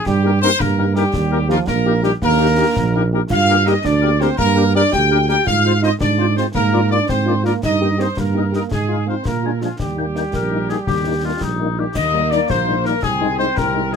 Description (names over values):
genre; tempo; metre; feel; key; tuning
military-style march for wind band; 111 BPM (dotted quarters); 6/8; straight; Eb major; A4 = 441 Hz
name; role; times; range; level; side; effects
clear trumpet section; melody; 0.0-14.0 s; F4 to G5; -20 LUFS; left 3 dB; none
warm euphonium; second line; 0.1-11.7 s; F3 to G4; -22 LUFS; right 7 dB; none
mellow tuba; bass; 0.1-14.0 s; Bb1 to Bb2; -19 LUFS; right 3 dB; none
concert snare drum, concert bass drum and clash cymbals; drums; 0.1-14.0 s; none; -27 LUFS; left 2 dB; none
warm woodwind section; second line; 0.2-14.0 s; D4 to Ab5; -23 LUFS; left 5 dB; none
mellow French horn section; accompaniment; 0.2-14.0 s; G3 to G4; -22 LUFS; left 3 dB; none
clear trombone section; sustained chords; 12.0-14.0 s; Bb3 to C4; -24 LUFS; left 2 dB; none
room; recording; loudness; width
little or no reverb; close, detailed microphones; -15 LUFS; side -6 dB against mid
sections
0.0-12.0 A section; 12.0-14.0 A section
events
none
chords
0.1 Eb/G; 1.1 Eb; 3.3 Gm; 5.5 Fm/Ab; 6.5 Bb7/Ab; 7.6 Eb/G; 8.7 Fm7/Ab; 9.3 Bb7; 9.8 Eb; 13.0 Ab/C